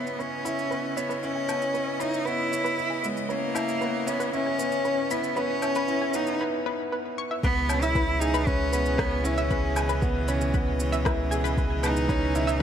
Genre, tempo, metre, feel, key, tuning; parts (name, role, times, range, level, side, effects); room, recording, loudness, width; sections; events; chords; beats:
piano and strings electronica; 116 BPM; 4/4; straight; C# minor; A4 = 440 Hz
bright cello; melody; 0.0-12.6 s; G#3 to E4; -28 LUFS; equal; ping-pong delay
warm string quartet; sustained chords; 0.0-12.6 s; B2 to D#5; -35 LUFS; right 1 dB; sidechain pumping
clear baby grand piano; riff; 0.0-12.6 s; B3 to B4; -30 LUFS; right 1 dB; ping-pong delay
electronic shaker, woodblock and rim click; drums; 0.1-12.6 s; -35 LUFS; equal; overdrive
analog pluck; arpeggios; 0.2-12.6 s; B4 to C#6; -34 LUFS; equal; chorus, sidechain pumping, ping-pong delay
warm sub bass; bass; 7.4-12.6 s; C#2; -28 LUFS; equal; sidechain pumping
electronic kick drum; drums; 7.4-12.2 s; -27 LUFS; equal; overdrive
moderate concert hall reverb, RT60 2.3 s; -24 LUFS; side -9 dB against mid
0.0-7.4 A section; 7.4-12.6 B section
build-up 0.0-7.4; filter sweep on synth arpeggio sound 0.0-7.4; break 6.4-7.4; drop 7.4-12.6
0.0 C#m7
0.20 0.71 | 1.23 1.75 2.26 2.78 | 3.30 3.82 4.33 4.85 | 5.37 5.88 6.40 6.92 | 7.44 7.95 8.47 8.99 | 9.51 10.02 10.54 11.06 | 11.57 12.09 12.61